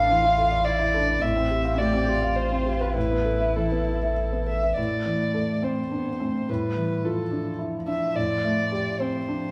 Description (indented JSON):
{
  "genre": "neoclassical piano and strings",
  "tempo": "106 BPM",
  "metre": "3/4",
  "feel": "rubato",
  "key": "A minor",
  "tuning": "A4 = 440 Hz",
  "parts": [
    { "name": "dark violin", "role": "melody", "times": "0.0-9.5 s", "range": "A4 to F5", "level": "-28 LUFS", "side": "equal", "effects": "none" },
    { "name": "dark cello", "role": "second line", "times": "0.0-9.5 s", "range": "F3 to G4", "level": "-35 LUFS", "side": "equal", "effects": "none" },
    { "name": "felt-muted upright piano", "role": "accompaniment", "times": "0.0-9.5 s", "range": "A2 to F5", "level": "-29 LUFS", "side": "equal", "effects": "none" },
    { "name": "pure sine sub bass", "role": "bass", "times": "0.0-4.7 s", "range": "A1", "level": "-31 LUFS", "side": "equal", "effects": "none" }
  ],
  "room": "wet large studio reverb, RT60 1.2 s",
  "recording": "band playing live in one room",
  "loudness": "-25 LUFS",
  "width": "mono",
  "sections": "0.0-4.8 A section; 4.8-9.5 B section",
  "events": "none",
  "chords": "0.0 Dmadd9/A; 1.2 Fadd9/A; 3.0 Asus2; 4.8 Am; 6.5 Dmadd9/A; 8.2 Fadd9/A"
}